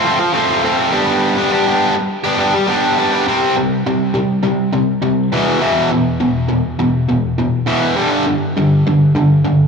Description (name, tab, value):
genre	rock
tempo	102 BPM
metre	4/4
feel	straight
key	G mixolydian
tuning	A4 = 440 Hz
part	distorted electric guitar	solo	0.0-9.7 s	E2 to G4	-13 LUFS	equal	overdrive, slapback echo, tape echo
room	light reverb, digital ambience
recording	live gig heard through the venue's PA, club reverb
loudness	-13 LUFS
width	side -5 dB against mid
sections	0.0-3.3 A section; 3.3-9.7 B section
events	none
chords	0.0 F; 0.9 G; 3.3 C5; 5.3 E5; 8.0 G5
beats	0.33 | 0.92 1.50 2.09 2.68 | 3.27 3.85 4.44 5.03 | 5.62 6.21 6.80 7.39 | 7.97 8.56 9.15